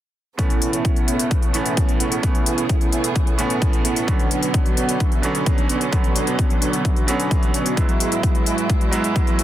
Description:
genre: EDM, festival progressive house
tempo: 130 BPM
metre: 4/4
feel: straight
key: A major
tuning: A4 = 444 Hz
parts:
  - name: bright baby grand piano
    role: accompaniment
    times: 0.4-9.4 s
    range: A2 to E4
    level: -24 LUFS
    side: right 4 dB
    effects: sidechain pumping, tape echo
  - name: muted studio string section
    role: sustained chords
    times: 0.4-9.4 s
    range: C#3 to G#4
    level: -30 LUFS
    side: right 2 dB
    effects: sidechain pumping
  - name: dense compressed supersaw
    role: riff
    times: 0.4-9.4 s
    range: G#3 to G#5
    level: -25 LUFS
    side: equal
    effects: sidechain pumping, low-pass filter, tape echo
  - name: electronic hi-hat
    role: drums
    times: 0.4-9.4 s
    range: none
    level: -26 LUFS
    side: left 3 dB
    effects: overdrive
  - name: electronic kick drum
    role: drums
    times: 0.4-9.2 s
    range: none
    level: -19 LUFS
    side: equal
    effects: overdrive
room: light reverb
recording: dense, heavily limited modern master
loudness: -17 LUFS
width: side -12 dB against mid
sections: 0.4-9.4 A section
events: none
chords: 0.4 Aadd9; 4.1 Bmadd9; 7.8 Eadd9

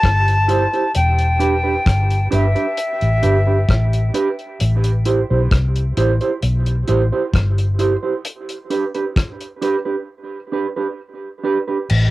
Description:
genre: dub reggae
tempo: 66 BPM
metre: 4/4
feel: straight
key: A minor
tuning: A4 = 439 Hz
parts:
  - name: breathy bright concert flute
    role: melody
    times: 0.0-4.1 s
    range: E5 to A5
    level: -20 LUFS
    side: left 2 dB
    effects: cassette tape, dub echo
  - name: vintage muted fingered electric bass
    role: bass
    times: 0.0-12.1 s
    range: E1 to C2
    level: -16 LUFS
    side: left 1 dB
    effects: transformer saturation
  - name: damped 70s drum kit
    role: drums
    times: 0.0-12.1 s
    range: crash cymbal, hi-hat, kick drum, rim click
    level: -20 LUFS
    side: left 1 dB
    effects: cassette tape
  - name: mellow electric guitar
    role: accompaniment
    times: 0.5-11.8 s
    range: D4 to C5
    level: -21 LUFS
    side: right 4 dB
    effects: warbly pitch drift, cassette tape, dub echo
room: moderate booth ambience, RT60 0.2 s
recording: home recording on cassette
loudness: -15 LUFS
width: side -18 dB against mid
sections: 0.0-11.9 A section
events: break 8.2-11.9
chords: 0.0 Am7; 0.9 Em7; 4.6 Am7; 8.2 G/D

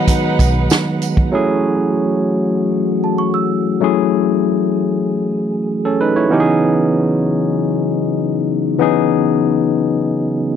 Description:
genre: lush 1970s-style soul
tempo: 96 BPM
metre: 4/4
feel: straight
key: F# dorian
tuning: A4 = 439 Hz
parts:
  - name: dark studio violin section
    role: second line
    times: 0.0-1.3 s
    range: D#4 to F#5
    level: -22 LUFS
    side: right 4 dB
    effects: none
  - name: barky tine electric piano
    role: accompaniment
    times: 0.0-10.6 s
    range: D#3 to C#5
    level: -15 LUFS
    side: moving between left 14 dB and right 3 dB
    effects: auto-pan
  - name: mellow tonewheel organ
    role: sustained chords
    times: 0.0-10.6 s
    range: C#3 to G#4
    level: -22 LUFS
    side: right 3 dB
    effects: chorus vibrato, slow rotary speaker
  - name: vintage drum kit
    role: drums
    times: 0.1-1.3 s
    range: hi-hat, kick drum, snare drum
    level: -15 LUFS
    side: right 1 dB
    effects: none
  - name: tambourine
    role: percussion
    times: 0.1-1.2 s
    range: none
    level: -31 LUFS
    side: right 24 dB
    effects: none
  - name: vintage muted fingered electric bass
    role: bass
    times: 0.4-0.7 s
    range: B1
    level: -17 LUFS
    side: right 1 dB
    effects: none
  - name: small celesta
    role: texture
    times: 3.0-4.2 s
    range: A5 to E6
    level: -24 LUFS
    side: right 7 dB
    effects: none
room: little or no reverb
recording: dry, close 1970s-style studio recording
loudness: -14 LUFS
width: side -8 dB against mid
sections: 0.0-1.3 A section; 1.3-10.6 B section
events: tine electric piano solo 0.0-1.3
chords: 0.0 G#m7; 1.3 F#m9; 6.3 C#m9

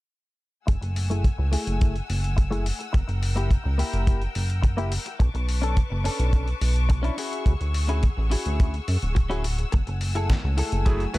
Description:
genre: nu-disco, nu disco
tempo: 106 BPM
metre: 4/4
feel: straight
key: F# minor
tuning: A4 = 440 Hz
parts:
  - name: rich symphonic string section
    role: sustained chords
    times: 0.7-11.2 s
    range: A3 to E6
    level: -35 LUFS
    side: left 3 dB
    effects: sidechain pumping
  - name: direct-recorded clean electric guitar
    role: riff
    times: 0.7-11.0 s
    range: A3 to A4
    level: -31 LUFS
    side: left 2 dB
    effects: analog chorus, low-pass filter, ping-pong delay
  - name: chorused synth bass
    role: bass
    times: 0.7-11.2 s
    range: D1 to F#2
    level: -24 LUFS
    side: equal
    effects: none
  - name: dusty soul sampler-style drum kit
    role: drums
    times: 0.7-11.2 s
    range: hi-hat, snare drum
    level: -36 LUFS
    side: left 3 dB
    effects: none
  - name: kick drum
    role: drums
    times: 0.7-11.0 s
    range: none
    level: -20 LUFS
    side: equal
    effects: none
  - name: clear electric grand piano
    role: accompaniment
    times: 10.9-11.2 s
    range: F#3 to B4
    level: -27 LUFS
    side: right 1 dB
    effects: sidechain pumping
room: small room ambience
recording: none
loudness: -22 LUFS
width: side -19 dB against mid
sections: 0.7-11.2 A section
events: filter sweep on clean electric guitar 0.7-11.2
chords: 0.7 F#m9; 2.9 F#7b9; 5.2 Bm9; 7.2 Dmaj9#11; 9.7 F#m9

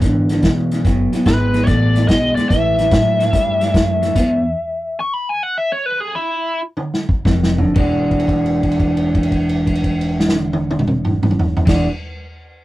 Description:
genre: electric blues shuffle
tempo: 116-145 BPM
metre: 4/4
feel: swing 68% on 8ths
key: E mixolydian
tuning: A4 = 439 Hz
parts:
  - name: electric guitar through a small old amp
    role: riff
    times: 0.0-4.4, 7.3-11.9 s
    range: E2 to F#4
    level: -18 LUFS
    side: equal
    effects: none
  - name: upright bass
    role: bass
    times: 0.0-4.5, 7.3-11.8 s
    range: E1 to A2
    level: -22 LUFS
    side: equal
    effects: none
  - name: vintage drum kit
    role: drums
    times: 0.0-11.8 s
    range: crash cymbal, hi-hat, kick drum, snare drum, toms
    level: -18 LUFS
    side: equal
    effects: none
  - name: biting lead guitar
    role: melody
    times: 1.3-6.6 s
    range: E4 to C#6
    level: -18 LUFS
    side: left 1 dB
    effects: overdrive
room: wet booth ambience, RT60 0.1 s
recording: rough rehearsal-room recording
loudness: -14 LUFS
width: side -16 dB against mid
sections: 0.0-7.8 A section; 7.8-11.9 B section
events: slowing down 4.2-7.8; stop 4.2-7.3; drum fill 6.8-7.8; held note 7.8-11.6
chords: 0.0 E7; 0.8 B5; 2.5 A5; 4.2 E5; 7.3 F5; 7.8 E9

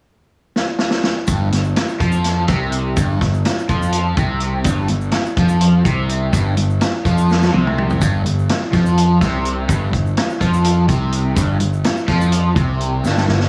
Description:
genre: psychedelic rock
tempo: 250 BPM (eighths)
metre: 7/8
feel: straight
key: unclear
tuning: A4 = 439 Hz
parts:
  - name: vintage drum kit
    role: drums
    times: 0.6-13.5 s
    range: hi-hat, kick drum, snare drum, toms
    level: -22 LUFS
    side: equal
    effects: none
  - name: overdriven semi-hollow guitar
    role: riff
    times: 1.3-13.5 s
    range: G2 to F3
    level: -22 LUFS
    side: equal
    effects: phaser
  - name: fuzz picked electric bass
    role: bass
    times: 1.3-13.5 s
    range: G1 to F2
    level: -21 LUFS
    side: equal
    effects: overdrive
  - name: tube shaker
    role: percussion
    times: 1.3-13.2 s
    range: none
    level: -42 LUFS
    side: equal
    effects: none
room: moderate echo chamber reverb, RT60 1.4 s, studio ambience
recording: none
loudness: -17 LUFS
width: mono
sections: 0.0-1.3 A section; 1.3-13.5 B section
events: drum fill 0.6-1.3, 7.3-8.0, 13.0-13.5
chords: 0.0 N.C.; 1.3 G7sus4

